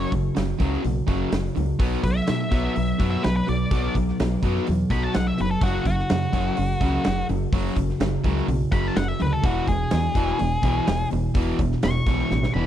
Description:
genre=classic rock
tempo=126 BPM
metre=4/4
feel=straight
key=unclear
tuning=A4 = 437 Hz
part: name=octave-fuzz lead guitar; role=melody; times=0.0-12.7 s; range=F#4 to C#6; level=-28 LUFS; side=left 1 dB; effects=distortion
part: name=overdriven semi-hollow guitar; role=riff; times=0.0-12.7 s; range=E2 to B3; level=-27 LUFS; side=left 10 dB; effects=none
part: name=overdriven semi-hollow guitar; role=riff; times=0.0-12.7 s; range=E2 to B3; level=-27 LUFS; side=right 9 dB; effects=none
part: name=deep dub fingered electric bass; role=bass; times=0.0-12.7 s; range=E1 to B2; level=-26 LUFS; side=equal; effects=none
part: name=huge arena drum kit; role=drums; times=0.1-12.7 s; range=hi-hat, kick drum, snare drum, toms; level=-26 LUFS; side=equal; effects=none
room=studio ambience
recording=dry, close 1970s-style studio recording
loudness=-20 LUFS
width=side -11 dB against mid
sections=0.0-12.7 A section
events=lead electric guitar solo 0.0-12.7; drum fill 12.3-12.7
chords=0.0 F#5; 1.8 B5; 5.6 F#5; 9.4 E

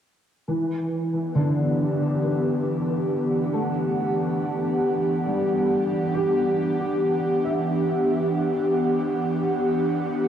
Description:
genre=ambient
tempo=69 BPM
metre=4/4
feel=straight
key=E minor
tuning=A4 = 440 Hz
part: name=airy breathy pad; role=sustained chords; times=0.5-10.3 s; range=E3 to F#5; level=-22 LUFS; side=equal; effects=chorus, shimmer reverb
part: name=felt-muted upright piano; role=arpeggios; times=0.5-10.3 s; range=D3 to E5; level=-27 LUFS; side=equal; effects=ensemble chorus, analog delay, shimmer reverb
room=wet plate reverb, RT60 2.7 s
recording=dreamy mix soaked in reverb, cassette tape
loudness=-21 LUFS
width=side -9 dB against mid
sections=0.5-10.3 A section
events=none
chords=0.5 Em9

